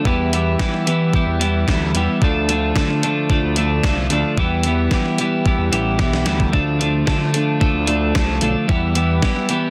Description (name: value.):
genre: indie rock.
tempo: 111 BPM.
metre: 4/4.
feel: straight.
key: unclear.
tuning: A4 = 440 Hz.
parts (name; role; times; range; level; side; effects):
mellow tonewheel organ; sustained chords; 0.0-9.7 s; A4 to E6; -35 LUFS; equal; slow rotary speaker.
clean electric guitar; riff; 0.0-9.7 s; E3 to A4; -24 LUFS; equal; lush chorus, slapback echo.
twelve-string electric guitar; riff; 0.0-9.7 s; D3 to F4; -24 LUFS; equal; none.
growling picked electric bass; bass; 0.0-9.7 s; A1 to E3; -24 LUFS; equal; overdrive.
gated 80s digital drum machine; drums; 0.1-9.6 s; hi-hat, kick drum, snare drum; -22 LUFS; equal; gated reverb, gated reverb snare.
room: light reverb.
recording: dense, heavily limited modern master.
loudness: -18 LUFS.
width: mono.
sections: 0.0-9.7 A section.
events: drum fill 6.0-6.5.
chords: 0.0 Em; 2.2 Dm; 4.4 Em; 6.5 Dm; 8.7 Em.